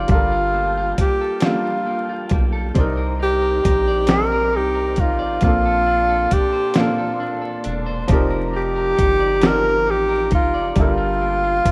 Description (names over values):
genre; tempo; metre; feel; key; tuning
slow six-eight R&B; 45 BPM (dotted quarters); 6/8; straight; G minor; A4 = 439 Hz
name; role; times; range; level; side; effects
breathy tenor saxophone; melody; 0.0-11.7 s; F4 to Bb4; -21 LUFS; equal; none
electric guitar at the edge of break-up; second line; 0.0-11.7 s; F3 to D5; -32 LUFS; equal; analog delay
clear concert grand piano; accompaniment; 0.0-11.7 s; Bb2 to D5; -29 LUFS; equal; none
tonewheel organ; sustained chords; 0.0-11.7 s; Bb3 to D6; -36 LUFS; equal; none
rubbery square bass; bass; 0.0-11.7 s; E1 to C2; -27 LUFS; equal; none
dusty soul sampler-style drum kit; drums; 0.1-11.7 s; hi-hat, kick drum, snare drum; -21 LUFS; equal; none
room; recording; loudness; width
light reverb; rough home demo mix, vinyl crackle; -19 LUFS; mono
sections
0.0-11.7 A section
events
none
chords
0.1 Gm9; 2.8 Cm9; 5.4 Bbmaj9; 8.1 F13sus4; 10.8 Gm9